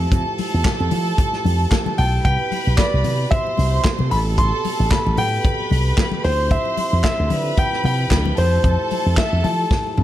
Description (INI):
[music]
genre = disco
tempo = 113 BPM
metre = 4/4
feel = swing 56% on 16ths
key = unclear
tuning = A4 = 436 Hz
[part]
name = warm studio string section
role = second line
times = 0.0-10.0 s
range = A4 to C6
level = -25 LUFS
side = right 2 dB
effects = none
[part]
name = dark French horn section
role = sustained chords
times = 0.0-10.0 s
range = B2 to A4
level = -30 LUFS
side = right 3 dB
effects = none
[part]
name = slap bass with an envelope filter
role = bass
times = 0.0-10.0 s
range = A1 to F3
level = -19 LUFS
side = equal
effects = none
[part]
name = warm soul drum kit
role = drums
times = 0.1-10.0 s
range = handclaps, hi-hat, kick drum, snare drum, toms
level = -22 LUFS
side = equal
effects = gated reverb
[part]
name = congas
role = percussion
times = 0.1-10.0 s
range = none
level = -29 LUFS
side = left 6 dB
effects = none
[part]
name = clear concert grand piano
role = melody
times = 2.0-10.0 s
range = C5 to C6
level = -23 LUFS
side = left 1 dB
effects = none
[sound]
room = little or no reverb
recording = none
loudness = -16 LUFS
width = side -13 dB against mid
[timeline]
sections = 0.0-10.0 A section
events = drum fill 9.7-10.0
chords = 0.0 Fmaj9; 2.2 Cmaj7; 4.1 Am9; 6.2 Dm11; 8.4 Fmaj9